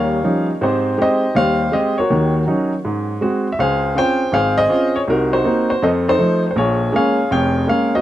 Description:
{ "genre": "solo jazz", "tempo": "161 BPM", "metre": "4/4", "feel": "swing 66% on 8ths", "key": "Ab major", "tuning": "A4 = 441 Hz", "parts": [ { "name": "clear baby grand piano", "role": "solo", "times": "0.0-8.0 s", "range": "F1 to G5", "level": "-15 LUFS", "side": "equal", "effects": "tape echo" } ], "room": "light reverb", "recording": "dry, close 1970s-style studio recording", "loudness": "-15 LUFS", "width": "side -13 dB against mid", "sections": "0.6-8.0 A section", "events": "none", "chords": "0.0 Eb9; 0.6 Abmaj7; 2.1 Ebm7; 2.8 Ab7; 3.6 Dbmaj7; 5.1 Cm7b5; 5.8 F7; 6.6 Bbm7" }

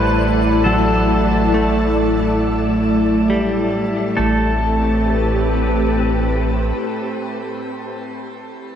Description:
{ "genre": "ambient", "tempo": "69 BPM", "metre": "4/4", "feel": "straight", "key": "A dorian", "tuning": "A4 = 440 Hz", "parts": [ { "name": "pedal steel guitar", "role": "melody", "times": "0.0-7.2 s", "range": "A4 to B4", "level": "-24 LUFS", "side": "left 1 dB", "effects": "tape echo" }, { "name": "glassy FM pad", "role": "sustained chords", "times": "0.0-7.7 s", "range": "A2 to A5", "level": "-20 LUFS", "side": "left 1 dB", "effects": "ensemble chorus, built-in reverb" }, { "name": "direct-recorded clean electric guitar", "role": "arpeggios", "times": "0.0-7.2 s", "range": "F#3 to A3", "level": "-22 LUFS", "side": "equal", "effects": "tape echo" }, { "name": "round analog bass", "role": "bass", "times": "0.0-6.7 s", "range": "A1", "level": "-21 LUFS", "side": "equal", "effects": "tube saturation" }, { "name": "bowed-like drone", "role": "drone", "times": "0.0-7.2 s", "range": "A3 to A4", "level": "-25 LUFS", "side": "right 2 dB", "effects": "built-in reverb" }, { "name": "twinkling granular texture", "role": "texture", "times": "0.0-4.2 s", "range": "F#5 to F#6", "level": "-42 LUFS", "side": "right 2 dB", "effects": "none" } ], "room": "wet shimmer reverb, RT60 8.3 s", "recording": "none", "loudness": "-15 LUFS", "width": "side -9 dB against mid", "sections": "0.0-4.2 A section; 4.2-7.6 B section", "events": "filter sweep on ambient pad 0.0-4.2", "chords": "0.0 A7(no3); 4.2 Am7" }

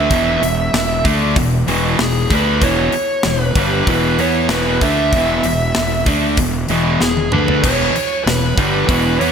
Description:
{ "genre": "hard rock", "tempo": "96 BPM", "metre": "4/4", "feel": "straight", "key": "unclear", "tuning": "A4 = 438 Hz", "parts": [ { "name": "bluesy overdriven lead guitar", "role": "melody", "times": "0.0-9.3 s", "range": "G#4 to E5", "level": "-20 LUFS", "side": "right 2 dB", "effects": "distortion, ping-pong delay" }, { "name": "overdriven electric guitar", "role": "riff", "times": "0.0-9.3 s", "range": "E2 to E4", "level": "-17 LUFS", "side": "equal", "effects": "none" }, { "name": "fuzz fingered electric bass", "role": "bass", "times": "0.0-9.3 s", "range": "E1 to E2", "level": "-20 LUFS", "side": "equal", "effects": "overdrive" }, { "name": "tight metal drum kit", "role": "drums", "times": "0.1-9.3 s", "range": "crash cymbal, hi-hat, kick drum, snare drum, toms", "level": "-20 LUFS", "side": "left 1 dB", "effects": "none" } ], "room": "moderate lush hall reverb, RT60 2.1 s", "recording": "bright 1980s-style digital production", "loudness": "-13 LUFS", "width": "side -7 dB against mid", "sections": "0.0-9.3 A section", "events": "drum fill 7.0-7.6", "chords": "0.0 E5" }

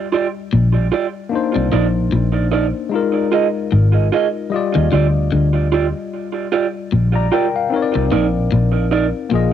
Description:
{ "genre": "reggae", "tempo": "75 BPM", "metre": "4/4", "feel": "swing 57% on 16ths", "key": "Eb major", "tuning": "A4 = 441 Hz", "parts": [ { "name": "tine electric piano", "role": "accompaniment", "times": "0.0-9.5 s", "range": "G3 to Bb5", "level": "-21 LUFS", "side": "left 8 dB", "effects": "overdrive, cassette tape" }, { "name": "electric guitar through a small old amp", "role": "stabs", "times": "0.1-9.1 s", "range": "Eb4 to Eb5", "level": "-20 LUFS", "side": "right 9 dB", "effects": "cassette tape, tape echo, plate reverb" }, { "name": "clean electric guitar", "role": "riff", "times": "0.5-9.5 s", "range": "Ab2 to Eb3", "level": "-19 LUFS", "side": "left 4 dB", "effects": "cassette tape" }, { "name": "vintage muted fingered electric bass", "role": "bass", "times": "0.5-9.5 s", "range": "Ab1 to Eb2", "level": "-17 LUFS", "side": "equal", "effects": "none" } ], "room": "light reverb", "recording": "home recording on cassette", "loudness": "-15 LUFS", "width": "side -10 dB against mid", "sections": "0.0-9.5 A section", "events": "none", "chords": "0.0 Ebmaj9; 1.3 Cm9; 2.9 Bb7sus4; 4.5 Ebmaj9; 7.7 Cm9" }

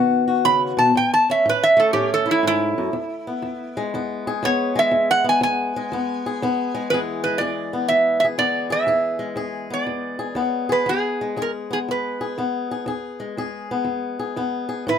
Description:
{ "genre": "acoustic country blues, solo or duo", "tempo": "121 BPM", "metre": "4/4", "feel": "swing 66% on 8ths", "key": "E mixolydian", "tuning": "A4 = 440 Hz", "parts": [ { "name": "fingerpicked swing-style acoustic guitar", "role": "accompaniment", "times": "0.0-15.0 s", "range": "E2 to G#4", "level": "-23 LUFS", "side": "left 3 dB", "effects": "none" }, { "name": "metal-body resonator slide guitar", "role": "melody", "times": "0.5-15.0 s", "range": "E4 to B5", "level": "-19 LUFS", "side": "right 2 dB", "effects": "none" } ], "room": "light reverb", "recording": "close, detailed microphones", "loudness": "-19 LUFS", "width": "side -8 dB against mid", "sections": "0.0-6.9 A section; 6.9-15.0 B section", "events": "resonator guitar played with a steel bar solo 0.0-6.9", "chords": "0.0 B; 0.9 A; 2.9 E" }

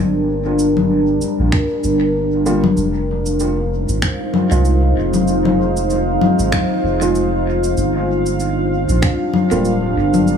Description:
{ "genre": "ambient dub", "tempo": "96 BPM", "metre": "4/4", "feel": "swing 57% on 16ths", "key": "F dorian", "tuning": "A4 = 444 Hz", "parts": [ { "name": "deep dark ambient pad", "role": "sustained chords", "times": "0.0-10.4 s", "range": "G3 to F5", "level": "-18 LUFS", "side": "right 1 dB", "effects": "chorus, built-in reverb" }, { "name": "soft dub sub bass", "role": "bass", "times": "0.0-10.4 s", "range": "D1 to C2", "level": "-19 LUFS", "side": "equal", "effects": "none" }, { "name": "electronic shaker, congas and finger snaps", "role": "drums", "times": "0.6-10.4 s", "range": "none", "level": "-20 LUFS", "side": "left 5 dB", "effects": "studio reverb, dub echo" }, { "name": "electronic kick drum", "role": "drums", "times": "1.5-9.2 s", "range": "none", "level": "-18 LUFS", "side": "right 1 dB", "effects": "studio reverb" }, { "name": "dark upright piano", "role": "stabs", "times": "2.5-9.7 s", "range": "G3 to F4", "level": "-23 LUFS", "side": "right 1 dB", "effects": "dub echo" } ], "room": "light reverb", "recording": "echo-heavy mix, small room ambience", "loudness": "-14 LUFS", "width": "side -7 dB against mid", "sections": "0.0-2.8 A section; 2.8-10.4 B section", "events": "none", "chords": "0.0 Gm; 2.8 Fm7; 7.8 Gm7" }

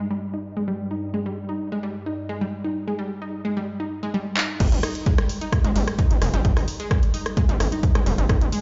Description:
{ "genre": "driving peak-time techno", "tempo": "130 BPM", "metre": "4/4", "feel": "straight", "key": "unclear", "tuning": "A4 = 440 Hz", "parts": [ { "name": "unison pluck", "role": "riff", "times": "0.0-8.6 s", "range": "G3 to Eb4", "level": "-30 LUFS", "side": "equal", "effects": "sidechain pumping, dub echo" }, { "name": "deep dark ambient pad", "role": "drone", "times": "0.0-8.6 s", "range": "G2 to G3", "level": "-37 LUFS", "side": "equal", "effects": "chorus, built-in reverb, sidechain pumping" }, { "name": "punchy analog drum machine", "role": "drums", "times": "4.4-8.6 s", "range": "crash cymbal, handclaps, hi-hat, ride cymbal, rim click", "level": "-31 LUFS", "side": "equal", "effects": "none" }, { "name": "gritty driven synth bass", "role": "bass", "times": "4.6-8.5 s", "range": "F1 to G1", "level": "-25 LUFS", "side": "equal", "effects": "distortion, sidechain pumping" }, { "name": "electronic kick drum", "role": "drums", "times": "4.6-8.4 s", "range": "none", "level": "-23 LUFS", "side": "equal", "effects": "none" } ], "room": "light reverb", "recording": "played on a big sound system in a bare room, large studio reverb, nothing above 7.6 kHz", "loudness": "-24 LUFS", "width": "mono", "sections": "0.0-4.6 A section; 4.6-8.6 B section", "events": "filter sweep on synth arpeggio sound 0.0-4.6; drum fill 4.4; drop 4.6-8.6", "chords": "0.0 Eb/G; 4.6 N.C." }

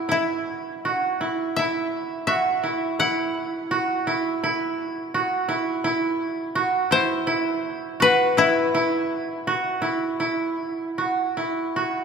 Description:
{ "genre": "japanese traditional, Japanese chamber music", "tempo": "83 BPM", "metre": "4/4", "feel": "rubato", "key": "unclear", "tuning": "A4 = 440 Hz", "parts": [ { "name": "koto", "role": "second line", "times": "0.0-12.0 s", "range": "E4 to F#4", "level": "-23 LUFS", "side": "right 3 dB", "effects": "none" }, { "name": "koto", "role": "melody", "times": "0.1-11.0 s", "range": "E4 to F#5", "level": "-23 LUFS", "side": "left 5 dB", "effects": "none" } ], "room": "wet church reverb, RT60 3.3 s", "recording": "minimal, uncompressed stereo recording", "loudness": "-21 LUFS", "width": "side -6 dB against mid", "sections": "0.0-11.8 A section", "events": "none", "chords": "none" }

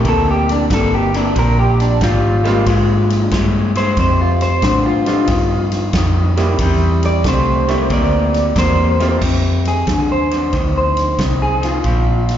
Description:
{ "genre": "electric blues shuffle", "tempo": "92 BPM", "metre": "4/4", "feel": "swing 67% on 8ths", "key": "unclear", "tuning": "A4 = 441 Hz", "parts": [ { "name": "clear grand piano", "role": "accompaniment", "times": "0.0-9.2 s", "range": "G3 to F4", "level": "-22 LUFS", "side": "right 6 dB", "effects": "none" }, { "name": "electric guitar through a small old amp", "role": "riff", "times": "0.0-12.4 s", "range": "F2 to Bb3", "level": "-19 LUFS", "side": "left 3 dB", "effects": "slapback echo" }, { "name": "vintage muted fingered electric bass", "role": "bass", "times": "0.0-12.4 s", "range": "G1 to A2", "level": "-17 LUFS", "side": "equal", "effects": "none" }, { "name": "natural country drum kit", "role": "drums", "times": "0.0-12.4 s", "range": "crash cymbal, kick drum, ride cymbal, snare drum", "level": "-22 LUFS", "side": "equal", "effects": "none" }, { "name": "electric guitar through a small old amp", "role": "melody", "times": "0.1-12.4 s", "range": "D4 to D5", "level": "-18 LUFS", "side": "right 1 dB", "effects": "lush chorus, slapback echo" } ], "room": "light reverb", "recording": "live gig heard through the venue's PA, recital hall reverb, nothing above 7.5 kHz", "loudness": "-13 LUFS", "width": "side -10 dB against mid", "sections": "0.0-9.2 A section; 9.2-12.4 B section", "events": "clean electric guitar solo 0.0-9.2", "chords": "0.0 C9; 1.4 Bb7(no3); 4.0 F9; 6.6 C9; 9.2 F5; 11.8 Bb5" }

